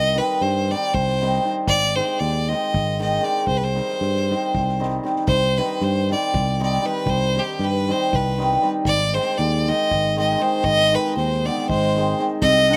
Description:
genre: balkan folk, Balkan wedding band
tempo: 234 BPM (eighths)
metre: 7/8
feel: straight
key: C minor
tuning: A4 = 440 Hz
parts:
  - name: bright violin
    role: melody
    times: 0.0-12.8 s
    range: G4 to F#5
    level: -24 LUFS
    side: equal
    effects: none
  - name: hammered dulcimer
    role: accompaniment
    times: 0.0-12.8 s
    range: Eb3 to Eb4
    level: -26 LUFS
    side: equal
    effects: none
  - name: fingered electric bass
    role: bass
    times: 0.0-12.7 s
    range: Ab1 to G2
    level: -26 LUFS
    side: equal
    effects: none
  - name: soft-mallet drum kit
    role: percussion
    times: 0.2-12.8 s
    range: kick drum, snare drum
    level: -32 LUFS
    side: equal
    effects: none
  - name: warm clarinet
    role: second line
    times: 11.5-12.8 s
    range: Ab3 to D4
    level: -26 LUFS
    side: equal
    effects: none
room: little or no reverb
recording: recorded outdoors, with no room sound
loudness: -21 LUFS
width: mono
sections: 0.0-5.3 A section; 5.3-12.8 A section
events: none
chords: 0.0 Cm; 1.7 Ab; 3.5 Cm; 8.9 Ab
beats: 0.13 0.39 0.65 0.91 1.16 1.42 | 1.68 1.93 2.19 2.45 2.71 2.96 3.22 | 3.48 3.73 3.99 4.25 4.50 4.76 5.01 | 5.27 5.53 5.78 6.04 6.30 6.55 6.81 | 7.06 7.32 7.58 7.83 8.09 8.34 8.60 | 8.85 9.11 9.36 9.62 9.87 10.13 10.38 | 10.64 10.89 11.15 11.40 11.65 11.91 12.16 | 12.42 12.67

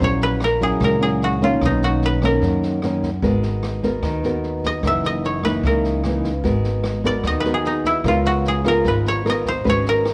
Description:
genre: bossa nova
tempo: 149 BPM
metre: 4/4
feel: straight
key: G# minor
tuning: A4 = 439 Hz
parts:
  - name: koto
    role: melody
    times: 0.0-10.1 s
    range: D#4 to E5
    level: -23 LUFS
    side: equal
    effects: none
  - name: nylon-string guitar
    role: accompaniment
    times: 0.0-10.1 s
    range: F#2 to B4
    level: -24 LUFS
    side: equal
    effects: none
  - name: upright bass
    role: bass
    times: 0.0-10.1 s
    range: F#1 to F#2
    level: -26 LUFS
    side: equal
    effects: transformer saturation
  - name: open jazz drum kit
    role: drums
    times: 0.0-10.1 s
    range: kick drum, rim click, snare drum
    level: -32 LUFS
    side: equal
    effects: none
room: light reverb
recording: worn, warbling old tape, cassette tape, warbly pitch drift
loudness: -20 LUFS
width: mono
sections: 0.0-10.1 A section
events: koto solo 0.0-10.1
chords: 0.0 F#7/A#; 1.6 Bmaj9; 3.2 G#m9; 4.8 F#6; 6.4 G#m9; 8.0 C#6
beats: | 0.00 0.41 0.81 1.21 | 1.61 2.02 2.42 2.82 | 3.22 3.62 4.03 4.43 | 4.83 5.23 5.63 6.04 | 6.44 6.84 7.24 7.64 | 8.05 8.45 8.85 9.25 | 9.65 10.05

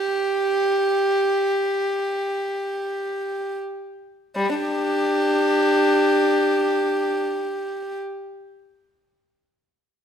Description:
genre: classical, free, expressive piece for unaccompanied violin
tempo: free time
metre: none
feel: none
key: unclear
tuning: A4 = 443 Hz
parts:
  - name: warm violin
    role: solo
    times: 0.0-8.0 s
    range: G3 to G4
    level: -20 LUFS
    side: equal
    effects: none
room: moderate recital hall reverb, RT60 1.6 s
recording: minimal, uncompressed stereo recording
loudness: -20 LUFS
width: side -8 dB against mid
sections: 0.0-4.4 A section; 4.4-9.7 B section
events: slowing down 0.0-4.4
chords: none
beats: free time

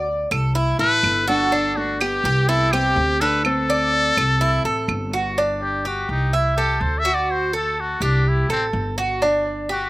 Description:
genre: latin, Cuban son and guajira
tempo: 125 BPM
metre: 4/4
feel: straight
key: G major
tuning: A4 = 442 Hz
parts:
  - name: trumpet with metal mute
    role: melody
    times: 0.0-9.9 s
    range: C4 to E5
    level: -21 LUFS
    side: left 2 dB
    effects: none
  - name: nylon-string guitar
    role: second line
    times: 0.0-5.1 s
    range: A3 to E4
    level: -27 LUFS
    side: equal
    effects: none
  - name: Cuban tres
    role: arpeggios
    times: 0.0-9.9 s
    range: D4 to E5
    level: -22 LUFS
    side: right 1 dB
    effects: slapback echo
  - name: upright bass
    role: bass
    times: 0.0-9.9 s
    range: G1 to D2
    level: -24 LUFS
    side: equal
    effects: none
  - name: claves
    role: percussion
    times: 0.3-5.1 s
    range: none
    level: -25 LUFS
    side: right 4 dB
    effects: none
room: little or no reverb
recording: recorded outdoors, with no room sound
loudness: -17 LUFS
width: side -19 dB against mid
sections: 0.0-5.4 A section; 5.4-9.9 B section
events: muted trumpet solo 5.4-9.9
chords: 0.0 D7(no3); 0.6 C6; 1.5 G; 2.5 C6; 3.4 D5; 4.4 C6; 5.4 G5; 6.3 C6; 7.3 D7; 8.3 C5; 9.2 G5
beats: 0.08 0.56 1.04 | 1.52 2.00 2.48 2.96 | 3.44 3.93 4.41 4.89 | 5.37 5.85 6.33 6.81 | 7.29 7.78 8.25 8.73 | 9.21 9.69

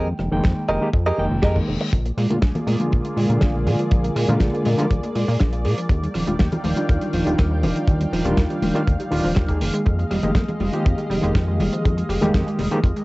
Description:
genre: nu-disco, nu disco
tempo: 121 BPM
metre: 4/4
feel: straight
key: F dorian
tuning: A4 = 440 Hz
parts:
  - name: overdriven reed electric piano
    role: accompaniment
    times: 0.0-12.8 s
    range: D3 to G5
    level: -24 LUFS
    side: equal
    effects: fast tremolo, sidechain pumping, cassette tape
  - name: direct-recorded clean electric guitar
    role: riff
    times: 0.0-1.8 s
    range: G4 to Eb5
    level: -24 LUFS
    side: right 1 dB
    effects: lush chorus, cassette tape, analog delay
  - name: chorused synth bass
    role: bass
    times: 0.0-12.9 s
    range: Eb1 to Bb2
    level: -23 LUFS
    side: equal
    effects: transformer saturation
  - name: damped 70s drum kit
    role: drums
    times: 0.2-13.0 s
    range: hi-hat, rim click, snare drum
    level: -28 LUFS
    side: equal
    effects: cassette tape
  - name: kick drum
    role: drums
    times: 0.4-12.9 s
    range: none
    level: -20 LUFS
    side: equal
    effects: cassette tape
  - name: reverse cymbal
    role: sound effects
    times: 1.2-1.9 s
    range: none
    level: -35 LUFS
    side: left 5 dB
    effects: none
  - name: lush unison pad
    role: sustained chords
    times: 2.2-13.0 s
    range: Eb3 to G5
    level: -28 LUFS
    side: equal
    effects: chorus, phaser, sidechain pumping, cassette tape
  - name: analog pluck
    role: arpeggios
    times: 1.9-13.0 s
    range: D3 to D4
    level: -27 LUFS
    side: right 1 dB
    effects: chorus, vintage 12-bit sampler grit, sidechain pumping, cassette tape, analog delay
  - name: congas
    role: percussion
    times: 2.3-12.7 s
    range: none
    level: -28 LUFS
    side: left 2 dB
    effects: none
room: moderate studio reverb, RT60 0.6 s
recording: home recording on cassette, nothing above 7.9 kHz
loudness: -18 LUFS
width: side -21 dB against mid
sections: 0.0-13.0 A section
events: clean electric guitar fill 1.2-1.9; reverse cymbal 1.2-1.9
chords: 0.0 Fm11; 1.9 Bb7; 5.9 Ebmaj9; 9.6 Fm11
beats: 0.44 0.94 1.43 | 1.93 2.42 2.92 3.42 | 3.91 4.41 4.90 5.40 | 5.90 6.39 6.89 7.38 | 7.88 8.38 8.87 9.37 | 9.86 10.36 10.86 11.35 | 11.85 12.34 12.84

